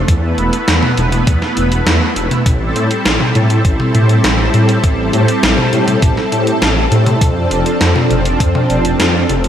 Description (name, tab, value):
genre	synthwave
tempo	101 BPM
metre	4/4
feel	straight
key	A minor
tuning	A4 = 440 Hz
part	analog string pad	sustained chords	0.0-9.5 s	F3 to B4	-16 LUFS	equal	ensemble chorus, sidechain pumping
part	wide detuned saw bass	bass	0.0-9.5 s	E1 to A2	-15 LUFS	equal	chorus, sidechain pumping
part	electronic kick drum	drums	0.1-8.5 s	none	-13 LUFS	equal	none
part	gated 80s digital drum machine	drums	0.1-9.5 s	hi-hat, snare drum, toms	-16 LUFS	equal	gated reverb, gated reverb snare
room	light reverb, digital ambience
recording	none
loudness	-11 LUFS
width	side -9 dB against mid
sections	0.0-9.5 A section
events	none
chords	0.1 Esus4; 2.5 Am7; 7.2 F6